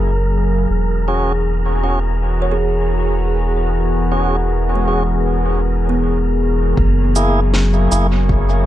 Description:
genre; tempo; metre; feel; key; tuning
ambient dub; 79 BPM; 4/4; straight; unclear; A4 = 436 Hz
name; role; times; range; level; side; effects
warbly tape-like pad; sustained chords; 0.0-8.7 s; E3 to A#4; -21 LUFS; left 1 dB; chorus, built-in reverb
kalimba; arpeggios; 0.0-6.9 s; G#3 to C#5; -26 LUFS; right 3 dB; low-pass filter, dub echo
soft dub sub bass; bass; 0.0-8.6 s; E1 to F#1; -17 LUFS; equal; none
wind-like tuned noise texture; texture; 0.0-8.7 s; A#4 to C#6; -29 LUFS; right 3 dB; built-in reverb
tonewheel organ; stabs; 1.1-8.1 s; A#3 to G#4; -23 LUFS; right 1 dB; overdrive, stopped rotary speaker, dub echo
electronic kick drum; drums; 6.8-8.4 s; none; -19 LUFS; equal; overdrive, studio reverb
electronic cabasa and snare drum; drums; 7.2-8.1 s; none; -24 LUFS; equal; studio reverb, dub echo
room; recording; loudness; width
digital ambience; dark, warm production; -14 LUFS; side -13 dB against mid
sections
0.0-6.8 A section; 6.8-8.7 B section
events
filter sweep on kalimba 0.0-6.8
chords
0.0 F#; 0.7 E6

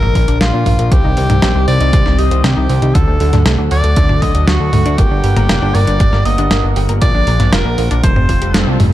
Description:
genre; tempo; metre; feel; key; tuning
synthwave; 118 BPM; 4/4; straight; C dorian; A4 = 440 Hz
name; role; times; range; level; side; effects
bright tenor saxophone; melody; 0.0-8.8 s; F4 to Eb5; -19 LUFS; equal; digital delay
chorused pulse-width pad; sustained chords; 0.0-8.9 s; Eb3 to F#5; -22 LUFS; left 1 dB; sidechain pumping
analog pluck; arpeggios; 0.0-8.9 s; A3 to C5; -22 LUFS; right 1 dB; chorus, ping-pong delay
fat analog bass; bass; 0.0-8.9 s; F1 to Bb2; -14 LUFS; equal; none
detuned 8-bit digital drum machine; drums; 0.0-8.9 s; hi-hat, snare drum, toms; -17 LUFS; equal; none
electronic kick drum; drums; 0.2-8.4 s; none; -14 LUFS; equal; none
room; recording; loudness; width
light reverb, digital ambience; dark, warm production; -10 LUFS; side -14 dB against mid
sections
0.0-8.9 A section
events
band accent 8.5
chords
0.0 Bb; 0.9 Cm; 3.0 D; 5.0 Gm; 7.0 Bb; 8.0 Fadd9

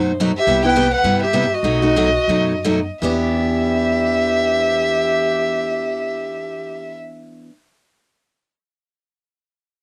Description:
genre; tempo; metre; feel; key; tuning
acoustic string swing (jazz manouche); 151-215 BPM; 4/4; swing 59% on 8ths; E minor; A4 = 440 Hz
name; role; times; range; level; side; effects
warm violin; melody; 0.0-7.0 s; D#5 to G5; -22 LUFS; equal; cassette tape
breathy clarinet; second line; 0.0-7.0 s; F#4 to B4; -26 LUFS; equal; cassette tape
picked steel-string acoustic guitar; accompaniment; 0.0-7.5 s; B2 to G4; -23 LUFS; equal; cassette tape
upright bass; bass; 0.0-7.5 s; B1 to G2; -30 LUFS; equal; none
room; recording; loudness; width
moderate booth ambience, RT60 0.2 s; home recording on cassette; -18 LUFS; mono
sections
0.0-3.0 A section; 3.0-6.2 B section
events
slowing down 0.5-3.0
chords
0.5 Cmaj7; 1.6 B7; 3.0 Em7

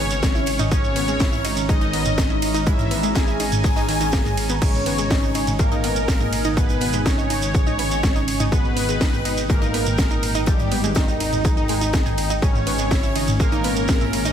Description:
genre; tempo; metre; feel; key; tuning
melodic techno; 123 BPM; 4/4; straight; G# harmonic minor; A4 = 440 Hz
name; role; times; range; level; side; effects
resonant sweep polysynth; melody; 0.0-14.3 s; D#2 to G#4; -27 LUFS; equal; chorus, sidechain pumping, dub echo
soft supersaw; second line; 0.0-14.3 s; D#4 to G#5; -28 LUFS; equal; phaser, sidechain pumping, digital delay
evolving wavetable pad; sustained chords; 0.0-14.3 s; C#4 to A#5; -29 LUFS; equal; chorus, built-in reverb, phaser, sidechain pumping
wide unison pluck; arpeggios; 0.0-14.3 s; D#3 to G#5; -28 LUFS; right 1 dB; vintage 12-bit sampler grit, sidechain pumping, digital delay
dark detuned saw bass; bass; 0.0-14.3 s; G#1; -26 LUFS; equal; sidechain pumping
gated 80s drum kit; drums; 0.1-14.3 s; hi-hat, snare drum; -36 LUFS; left 4 dB; sidechain pumping on hats, high-pass filter on hats, high-pass filter on snare, high-pass filter on room
house drum kit; drums; 0.1-14.3 s; crash cymbal, hi-hat, ride cymbal, snare drum, toms; -26 LUFS; equal; overdrive
shekere; percussion; 0.1-14.3 s; none; -34 LUFS; right 6 dB; none
electronic kick drum; drums; 0.2-14.0 s; none; -20 LUFS; equal; overdrive
room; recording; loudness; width
little or no reverb; none; -18 LUFS; side -9 dB against mid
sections
0.0-14.3 A section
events
none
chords
0.0 C#m/G#; 4.6 G#m; 12.4 C#m/G#

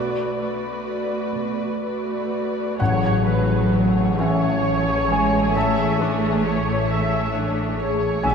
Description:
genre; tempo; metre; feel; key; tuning
cinematic, emotional film score for orchestra; 41-45 BPM (dotted quarters); 6/8; rubato; A major; A4 = 441 Hz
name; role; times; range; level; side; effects
muted studio violin section; second line; 0.0-8.3 s; A3 to D5; -28 LUFS; left 2 dB; none
muted studio viola section; accompaniment; 0.0-8.3 s; A3 to E5; -26 LUFS; right 2 dB; none
warm grand piano; accompaniment; 0.0-8.3 s; A1 to A5; -24 LUFS; left 1 dB; none
concert harp; arpeggios; 0.0-8.3 s; A2 to C#5; -28 LUFS; left 4 dB; none
muted studio cello section; bass; 0.0-8.3 s; B2 to A3; -26 LUFS; equal; none
muted studio violin section; melody; 2.8-8.3 s; C#5 to D5; -31 LUFS; left 8 dB; none
muted studio double bass section; bass; 2.8-8.3 s; A1 to B1; -26 LUFS; right 2 dB; none
room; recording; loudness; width
wet church reverb, RT60 3.8 s; recorded in a church or concert hall; -19 LUFS; side -6 dB against mid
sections
0.0-2.8 A section; 2.8-8.3 B section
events
none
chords
0.0 Bm7; 2.8 Amaj7

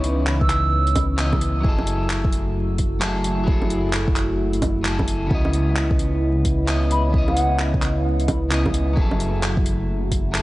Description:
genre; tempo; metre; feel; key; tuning
future garage; 131 BPM; 4/4; swing 63% on 16ths; C# minor; A4 = 439 Hz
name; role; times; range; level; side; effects
electric guitar at the edge of break-up; accompaniment; 0.0-10.4 s; C#3 to D#5; -26 LUFS; left 1 dB; spring reverb, sidechain pumping, tape echo
dark analog pad; sustained chords; 0.0-10.4 s; E3 to D#5; -28 LUFS; right 2 dB; chorus, sidechain pumping
dark detuned saw bass; bass; 0.0-10.4 s; F#1 to C#2; -23 LUFS; equal; sidechain pumping
deep house drum kit; drums; 0.0-10.4 s; bongos, handclaps, hi-hat; -27 LUFS; equal; overdrive
mellow wooden flute; melody; 0.4-1.0, 6.9-7.6 s; F#5 to E6; -27 LUFS; right 2 dB; tape echo
electronic kick drum; drums; 0.4-10.2 s; none; -22 LUFS; equal; overdrive
room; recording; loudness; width
light reverb; vinyl crackle, nothing above 10.8 kHz; -18 LUFS; side -18 dB against mid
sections
0.0-10.4 A section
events
none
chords
0.0 C#m9; 1.6 F#m9; 5.3 C#m9; 9.0 F#m9

